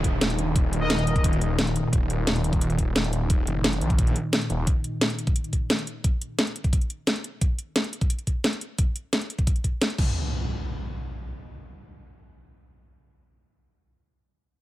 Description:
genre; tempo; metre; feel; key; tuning
dark technical drum and bass; 175 BPM; 4/4; straight; unclear; A4 = 440 Hz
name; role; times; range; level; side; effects
swarming drone; sustained chords; 0.0-4.6 s; Bb2 to Eb4; -29 LUFS; equal; built-in reverb, sidechain pumping
snarling distorted saw bass; bass; 0.0-4.7 s; Eb1 to Bb1; -27 LUFS; equal; distortion, overdrive, sidechain pumping
drum and bass drum kit; drums; 0.0-10.1 s; crash cymbal, hi-hat, snare drum; -25 LUFS; equal; none
electronic kick drum; drums; 0.0-10.1 s; none; -23 LUFS; equal; none
downlifter and impact; sound effects; 0.0-1.9, 10.0-13.7 s; none; -33 LUFS; equal; none
clear brass ensemble; stabs; 0.8-1.2 s; Eb4 to Eb5; -31 LUFS; left 2 dB; tape echo
room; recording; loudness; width
light reverb; none; -22 LUFS; side -15 dB against mid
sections
0.0-10.2 A section; 10.2-12.9 B section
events
none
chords
0.0 Eb5; 10.0 N.C.

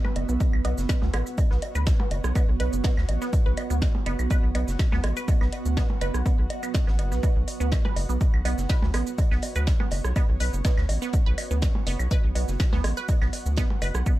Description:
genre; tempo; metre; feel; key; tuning
minimal techno; 123 BPM; 4/4; straight; B minor; A4 = 439 Hz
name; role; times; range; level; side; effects
resonant blip pluck; riff; 0.0-14.1 s; B3 to B4; -34 LUFS; right 4 dB; phaser, sidechain pumping, tape echo
electronic percussion blips, woodblock and rim click; percussion; 0.0-14.2 s; none; -35 LUFS; right 2 dB; digital delay
granular cloud pad; texture; 0.0-14.2 s; B3 to F#5; -35 LUFS; right 3 dB; built-in reverb, sidechain pumping
rubbery square bass; bass; 0.2-14.0 s; F#1 to D2; -26 LUFS; equal; sidechain pumping
huge arena drum kit; drums; 0.2-13.9 s; hi-hat, snare drum; -47 LUFS; right 2 dB; sidechain pumping on hats, high-pass filter on hats, high-pass filter on snare, high-pass filter on room
minimal click drum kit; drums; 0.2-14.2 s; hi-hat, shaker, snare drum; -34 LUFS; equal; none
electronic kick drum; drums; 0.4-14.2 s; none; -23 LUFS; equal; none
room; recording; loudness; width
little or no reverb; dark, warm production; -22 LUFS; side -16 dB against mid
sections
0.0-14.2 A section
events
none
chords
0.0 Bm

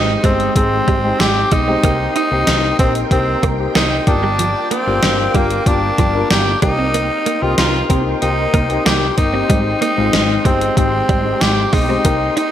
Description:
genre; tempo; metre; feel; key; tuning
1980s-style pop; 94 BPM; 4/4; straight; C minor; A4 = 440 Hz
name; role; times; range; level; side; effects
raspy tenor saxophone; melody; 0.0-12.5 s; Bb3 to G4; -18 LUFS; equal; none
warm baby grand piano; accompaniment; 0.0-12.5 s; Ab3 to Bb4; -21 LUFS; left 3 dB; none
soft string machine; sustained chords; 0.0-12.5 s; Ab3 to D6; -25 LUFS; equal; ensemble chorus
woody fretless electric bass; bass; 0.0-12.3 s; G1 to C2; -21 LUFS; equal; wide subtle chorus
direct-recorded clean electric guitar; riff; 0.2-12.5 s; F3 to Eb4; -25 LUFS; right 6 dB; ensemble chorus
gated 80s digital drum machine; drums; 0.2-12.5 s; hi-hat, kick drum, snare drum; -17 LUFS; equal; gated reverb, gated reverb snare, overdrive
room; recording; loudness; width
moderate plate reverb, RT60 2.6 s; bright 1980s-style digital production; -13 LUFS; side -10 dB against mid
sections
0.0-12.5 A section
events
none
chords
0.0 Abmaj7; 1.8 Cm7; 4.1 Gm7; 6.6 Cm7; 9.5 Abmaj7

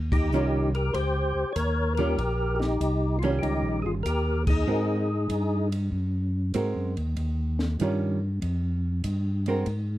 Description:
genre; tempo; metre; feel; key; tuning
soul jazz organ trio; 96 BPM; 4/4; swing 68% on 8ths; Eb mixolydian; A4 = 442 Hz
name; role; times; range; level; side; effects
tonewheel organ; bass; 0.0-10.0 s; G1 to Ab2; -27 LUFS; equal; overdrive, chorus vibrato, slow rotary speaker
percussive tonewheel organ; melody; 0.1-5.7 s; Db4 to Db5; -28 LUFS; left 1 dB; slow rotary speaker, overdrive, chorus vibrato
compact cocktail drum kit; drums; 0.1-9.9 s; crash cymbal, hi-hat, kick drum, ride cymbal, snare drum; -30 LUFS; equal; none
archtop guitar, miked and amplified; accompaniment; 0.3-9.7 s; Eb3 to Bb4; -28 LUFS; right 3 dB; none
room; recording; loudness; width
light reverb; dark, warm production; -24 LUFS; side -15 dB against mid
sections
0.0-10.0 A section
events
band accent 0.0-0.3, 4.4-4.7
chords
0.0 Eb9; 4.7 Ab9; 7.2 Eb9

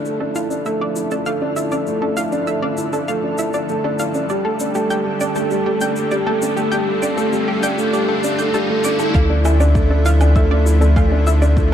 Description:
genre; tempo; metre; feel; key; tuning
piano and strings electronica; 99 BPM; 4/4; straight; unclear; A4 = 440 Hz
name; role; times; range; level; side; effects
lush unison pad; sustained chords; 0.0-11.7 s; D3 to A4; -25 LUFS; left 1 dB; chorus, shimmer reverb
analog pluck; arpeggios; 0.0-11.6 s; G4 to G6; -25 LUFS; equal; chorus, sidechain pumping, ping-pong delay, shimmer reverb
dark upright piano; riff; 0.0-11.7 s; G3 to E4; -20 LUFS; right 1 dB; ping-pong delay, shimmer reverb
riser; sound effects; 0.0-9.1 s; none; -28 LUFS; left 2 dB; none
shaker and woodblock; drums; 0.1-11.7 s; none; -32 LUFS; left 1 dB; overdrive
round analog bass; bass; 9.1-11.7 s; D2; -14 LUFS; equal; sidechain pumping
electronic kick drum; drums; 9.1-11.7 s; none; -17 LUFS; equal; overdrive
room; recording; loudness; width
moderate huge ambient reverb, RT60 4.2 s; dark, warm production; -15 LUFS; side -9 dB against mid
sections
0.0-9.1 A section; 9.1-11.7 B section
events
build-up 0.0-9.1; riser 0.0-9.1; filter sweep on analog synth pad 0.0-9.1; drop 9.1-11.7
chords
0.0 Dmadd9; 4.3 Gsus2; 9.1 Dmadd9

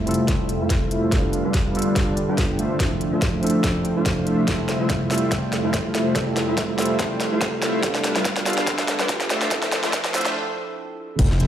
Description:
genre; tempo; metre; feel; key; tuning
future bass; 143 BPM; 4/4; swing 54% on 16ths, half-time; unclear; A4 = 440 Hz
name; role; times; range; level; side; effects
tine electric piano; accompaniment; 0.0-11.2 s; F3 to A4; -26 LUFS; right 2 dB; phaser, sidechain pumping, tape echo
ethereal airy pad; sustained chords; 0.0-10.3 s; D2 to E5; -31 LUFS; equal; ensemble chorus, built-in reverb, sidechain pumping
soft supersaw; riff; 0.0-11.5 s; G3 to A5; -24 LUFS; equal; sidechain pumping, low-pass filter, tape echo
trap drum kit; drums; 0.1-11.5 s; crash cymbal, hi-hat, snare drum; -26 LUFS; equal; high-pass filter on snare, high-pass filter on hats, high-pass filter on cymbals
electronic kick drum; drums; 0.3-11.3 s; none; -24 LUFS; equal; none
riser and impact; sound effects; 8.7-11.5 s; none; -37 LUFS; left 1 dB; none
fat analog bass; bass; 11.2-11.5 s; F1; -19 LUFS; equal; sidechain pumping
room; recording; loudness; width
moderate digital room reverb, RT60 1.0 s; played on a big sound system in a bare room, large studio reverb, high-pass filter; -19 LUFS; side -10 dB against mid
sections
0.0-11.2 A section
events
build-up 0.0-11.2; drum fill 0.0-10.4; filter sweep on supersaw synth 0.0-11.2; filter sweep 0.0-11.2; break 10.4-11.2; impact 11.2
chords
0.0 Fmaj7; 1.1 G7; 2.6 Dm9; 4.5 Fmaj7; 7.8 G7; 9.3 Dm9

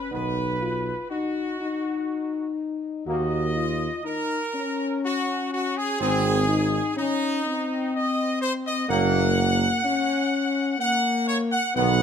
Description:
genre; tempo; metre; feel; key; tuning
classical; 62 BPM; 3/4; straight; F# major; A4 = 439 Hz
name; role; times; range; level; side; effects
warm trumpet section; melody; 0.0-12.0 s; D#4 to F#5; -26 LUFS; equal; none
mellow French horn section; sustained chords; 0.0-12.0 s; A#3 to F#4; -27 LUFS; left 4 dB; none
dark trombone section; sustained chords; 0.1-12.0 s; D#3 to B#3; -30 LUFS; right 3 dB; none
mellow tuba; bass; 0.1-12.0 s; F#1 to D#2; -25 LUFS; right 6 dB; none
room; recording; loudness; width
light reverb; close, detailed microphones; -22 LUFS; side -8 dB against mid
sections
0.0-12.0 A section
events
none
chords
0.1 B; 3.1 D#5; 6.0 G#; 8.9 F#

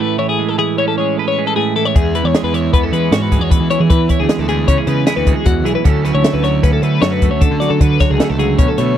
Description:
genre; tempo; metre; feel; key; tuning
math rock and midwest emo; 154 BPM; 5/4; straight; unclear; A4 = 440 Hz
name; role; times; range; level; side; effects
twelve-string electric guitar; accompaniment; 0.0-9.0 s; E2 to B4; -18 LUFS; right 10 dB; none
twelve-string electric guitar; arpeggios; 0.0-9.0 s; F#4 to D5; -18 LUFS; left 8 dB; tremolo
fuzz picked electric bass; bass; 2.0-8.9 s; B1 to E3; -18 LUFS; left 1 dB; overdrive
compact cocktail drum kit; drums; 2.0-8.9 s; hi-hat, kick drum, snare drum; -14 LUFS; left 1 dB; none
room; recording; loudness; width
little or no reverb; dry, close 1970s-style studio recording; -12 LUFS; side -10 dB against mid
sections
0.0-9.0 A section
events
none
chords
0.0 Amaj7; 2.0 E13; 5.9 Dmaj9

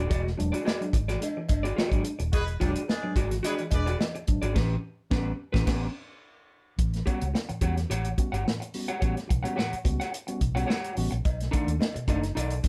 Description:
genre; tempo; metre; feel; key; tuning
funk; 108 BPM; 4/4; straight; unclear; A4 = 442 Hz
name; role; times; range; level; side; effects
electric guitar at the edge of break-up; accompaniment; 0.0-12.7 s; C#4 to F#5; -35 LUFS; equal; none
mellow tine electric piano; stabs; 0.0-12.7 s; A2 to F#4; -36 LUFS; equal; none
vintage muted fingered electric bass; bass; 0.0-12.6 s; D#1 to E2; -32 LUFS; equal; none
warm soul drum kit; drums; 0.1-12.7 s; crash cymbal, hi-hat, kick drum, snare drum; -31 LUFS; equal; none
cowbell; percussion; 0.1-4.1, 11.3-12.5 s; none; -42 LUFS; equal; none
warm horn section; second line; 2.3-4.0 s; B3 to D5; -37 LUFS; equal; slapback echo
room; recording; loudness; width
light reverb; none; -28 LUFS; mono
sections
0.0-6.8 A section; 6.8-12.7 B section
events
band accent 4.6-6.8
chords
0.0 E9; 4.6 A9; 6.8 A13; 11.2 B7#9

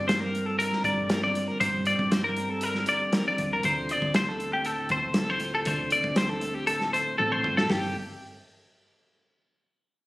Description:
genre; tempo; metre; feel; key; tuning
math rock and midwest emo; 118 BPM; 4/4; straight; G minor; A4 = 440 Hz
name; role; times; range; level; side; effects
twelve-string electric guitar; accompaniment; 0.0-7.9 s; G2 to A4; -33 LUFS; right 2 dB; none
twelve-string electric guitar; arpeggios; 0.0-8.0 s; G4 to D5; -26 LUFS; left 1 dB; none
hollow-body short-scale fingered electric bass; bass; 0.0-7.9 s; G1 to D2; -36 LUFS; left 1 dB; none
loose indie drum kit; drums; 0.1-7.8 s; hi-hat, kick drum, snare drum, toms; -29 LUFS; equal; none
room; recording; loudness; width
moderate studio reverb, RT60 0.8 s; recorded on a phone in the room, studio reverb; -24 LUFS; side -19 dB against mid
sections
0.0-7.7 A section; 7.7-9.7 B section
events
drum fill 7.2-7.7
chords
0.0 Gm11; 3.6 Dm7; 7.7 Gsus4

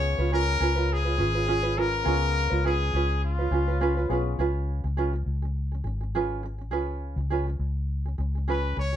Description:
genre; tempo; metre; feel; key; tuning
pop; 103 BPM; 4/4; swing 55% on 16ths; unclear; A4 = 441 Hz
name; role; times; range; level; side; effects
brilliant trumpet; melody; 0.0-4.1, 8.5-9.0 s; F4 to Db5; -28 LUFS; left 4 dB; slapback echo, plate reverb
clear baby grand piano; accompaniment; 0.0-4.4 s; Cb4 to Db5; -38 LUFS; left 7 dB; none
tenor ukulele; accompaniment; 0.0-9.0 s; Db4 to Cb5; -29 LUFS; right 4 dB; none
vintage muted fingered electric bass; bass; 0.0-9.0 s; Ab1 to Db2; -27 LUFS; left 1 dB; none
room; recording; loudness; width
light reverb; none; -24 LUFS; side -10 dB against mid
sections
0.0-4.4 A section; 4.4-9.0 B section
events
none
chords
0.0 Db7

